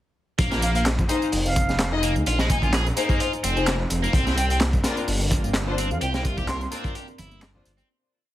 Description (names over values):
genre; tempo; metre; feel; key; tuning
breakbeat, breaks; 128 BPM; 4/4; swing 54% on 16ths; unclear; A4 = 439 Hz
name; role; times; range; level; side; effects
distorted electric guitar; riff; 0.4-7.9 s; Ab3 to Bb4; -29 LUFS; equal; overdrive, vintage 12-bit sampler grit, tape echo
dark detuned saw bass; bass; 0.4-7.8 s; F1 to F2; -25 LUFS; equal; tube saturation
crunchy breakbeat drum kit; drums; 0.4-7.8 s; hi-hat, kick drum, snare drum; -25 LUFS; equal; none
electronic tambourine and handclaps; drums; 0.4-7.9 s; none; -32 LUFS; right 1 dB; overdrive
concert flute; melody; 0.6-6.7 s; F5 to C6; -31 LUFS; right 1 dB; telephone sound, tape echo
warm studio string section; stabs; 1.1-7.6 s; D4 to Eb5; -28 LUFS; left 4 dB; tape echo
deep dark ambient pad; sustained chords; 5.2-7.9 s; C4 to F5; -37 LUFS; equal; chorus, built-in reverb, vintage 12-bit sampler grit, sidechain pumping
congas; percussion; 4.6-7.6 s; none; -36 LUFS; equal; none
room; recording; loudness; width
light reverb; heavily compressed radio sound; -20 LUFS; side -14 dB against mid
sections
0.4-7.9 drop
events
drop 0.4-7.9; fade-out 5.4-7.9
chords
0.4 Bb9sus4; 4.1 C9sus4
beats
| 0.39 0.86 1.33 1.80 | 2.27 2.73 3.20 3.67 | 4.14 4.61 5.08 5.55 | 6.02 6.48 6.95 7.42